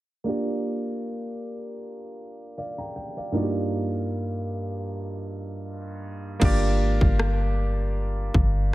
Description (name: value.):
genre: contemporary R&B.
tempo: 78 BPM.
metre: 4/4.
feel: swing 54% on 16ths.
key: unclear.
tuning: A4 = 440 Hz.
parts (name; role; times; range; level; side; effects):
clear baby grand piano; accompaniment; 0.2-8.7 s; G2 to Bb5; -28 LUFS; right 1 dB; none.
soft 808-style bass; bass; 6.4-8.7 s; G1 to Ab1; -23 LUFS; equal; none.
trap drum kit; drums; 6.4-8.5 s; crash cymbal, kick drum, rim click; -23 LUFS; equal; none.
room: light reverb, digital ambience.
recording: low-pass filter.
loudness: -24 LUFS.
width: side -17 dB against mid.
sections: 0.3-6.4 A section; 6.4-8.7 B section.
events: filter sweep 0.3-6.4; hi-hats muted 6.4-8.7.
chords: 0.3 Gm7; 3.3 Ebmaj9/G; 6.4 Gm7.